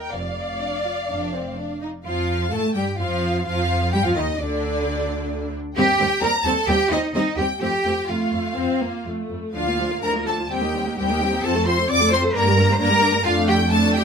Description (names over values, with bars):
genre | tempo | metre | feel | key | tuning
quick classical-period movement for string orchestra | 121-134 BPM | 4/4 | rubato | unclear | A4 = 440 Hz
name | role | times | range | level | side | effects
warm studio violin section | melody | 0.0-14.0 s | D5 to D6 | -28 LUFS | left 2 dB | none
warm studio viola section | accompaniment | 0.0-14.0 s | D3 to D5 | -24 LUFS | equal | none
rich studio cello section | bass | 0.1-14.0 s | F2 to D5 | -25 LUFS | right 1 dB | none
warm studio double bass section | bass | 0.1-14.0 s | F1 to A2 | -26 LUFS | right 2 dB | none
rich studio violin section | second line | 0.6-14.0 s | C4 to D6 | -26 LUFS | left 1 dB | none
room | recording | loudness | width
light reverb | minimal, uncompressed stereo recording | -19 LUFS | side -6 dB against mid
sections
0.0-2.1 A section; 2.1-14.0 B section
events
none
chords
0.1 Dm/F; 2.1 Fadd9; 3.9 N.C.; 5.8 Cm/Eb; 7.6 F; 9.5 Bb/D; 10.5 Cm7/Eb; 11.4 F; 12.3 Gm; 13.3 Dm/F